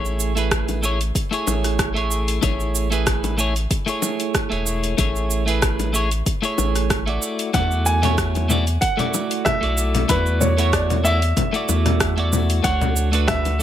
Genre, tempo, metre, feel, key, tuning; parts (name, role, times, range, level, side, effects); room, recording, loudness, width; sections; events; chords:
sunset chillout; 94 BPM; 4/4; swing 54% on 16ths; A major; A4 = 440 Hz
twelve-string electric guitar; accompaniment; 0.0-13.6 s; A3 to D5; -24 LUFS; moving between left 3 dB and right 6 dB; auto-pan, ping-pong delay
round analog bass; bass; 0.0-13.6 s; E1 to E2; -22 LUFS; equal
deep house drum kit; drums; 0.1-13.6 s; cabasa, congas, hi-hat, rim click; -24 LUFS; left 1 dB
electronic kick drum; drums; 0.5-13.4 s; -25 LUFS; equal
bongos; percussion; 0.7-13.6 s; -29 LUFS; left 6 dB
warm grand piano; melody; 7.5-13.6 s; B4 to G#5; -24 LUFS; right 1 dB; ping-pong delay
light reverb; -18 LUFS; side -11 dB against mid
0.0-13.6 A section
0.0 Amaj7; 7.2 E9sus4; 12.6 Dmaj7